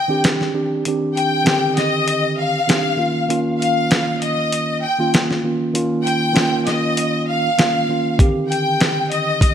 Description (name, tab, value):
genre	hip hop, boom-bap hip-hop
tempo	98 BPM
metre	4/4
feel	swing 54% on 16ths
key	unclear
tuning	A4 = 441 Hz
part	bright studio violin section	melody	0.0-9.5 s	Eb5 to G5	-20 LUFS	left 2 dB	ping-pong delay
part	mellow tine electric piano	accompaniment	0.1-9.5 s	D3 to G4	-20 LUFS	right 2 dB	slow stereo tremolo, cassette tape
part	dusty soul sampler-style drum kit	drums	0.2-9.5 s	hi-hat, kick drum, snare drum	-18 LUFS	equal	none
room	light reverb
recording	vinyl crackle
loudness	-16 LUFS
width	side -9 dB against mid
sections	0.0-9.5 A section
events	break 0.0-8.2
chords	0.0 Cmadd9; 3.0 Db69; 8.2 Cmadd9